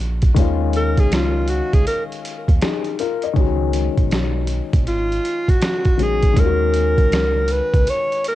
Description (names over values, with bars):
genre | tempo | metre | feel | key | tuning
hip hop, jazz-hop | 80 BPM | 4/4 | swing 64% on 16ths | unclear | A4 = 436 Hz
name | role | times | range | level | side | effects
dark upright piano | accompaniment | 0.0-8.3 s | Eb3 to Eb5 | -24 LUFS | left 10 dB | none
deep dub fingered electric bass | bass | 0.0-7.8 s | Ab1 to Eb2 | -21 LUFS | right 1 dB | none
boom bap sampler-style drum kit | drums | 0.2-8.3 s | hi-hat, kick drum, snare drum | -18 LUFS | right 1 dB | cassette tape
breathy alto saxophone | melody | 0.8-8.3 s | F4 to Db5 | -21 LUFS | equal | cassette tape
room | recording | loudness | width
little or no reverb | home recording on cassette | -16 LUFS | side -14 dB against mid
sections
0.0-8.3 A section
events
alto saxophone solo 0.0-8.3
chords
0.4 Dbadd9; 3.4 Db7sus4; 6.4 Ebm7